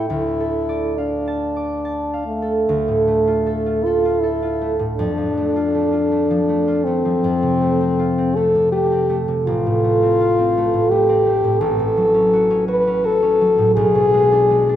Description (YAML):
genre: classical, romantic duo for French horn and harp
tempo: 67-85 BPM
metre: 3/4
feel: rubato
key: D minor, F# minor from 11.6 s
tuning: A4 = 440 Hz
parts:
  - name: warm French horn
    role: melody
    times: 0.0-14.8 s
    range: A3 to B4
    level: -18 LUFS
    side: left 3 dB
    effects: none
  - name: concert harp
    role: accompaniment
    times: 0.0-14.8 s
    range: A1 to D6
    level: -19 LUFS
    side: right 2 dB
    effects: none
room: wet recital hall reverb, RT60 1.6 s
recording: none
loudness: -15 LUFS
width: side -11 dB against mid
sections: 0.0-2.7 A section; 2.7-14.8 B section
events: none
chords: 0.1 Dm; 5.0 Dm/F; 7.2 F; 9.5 F/A; 11.6 F#m/A; 13.8 G#dim/B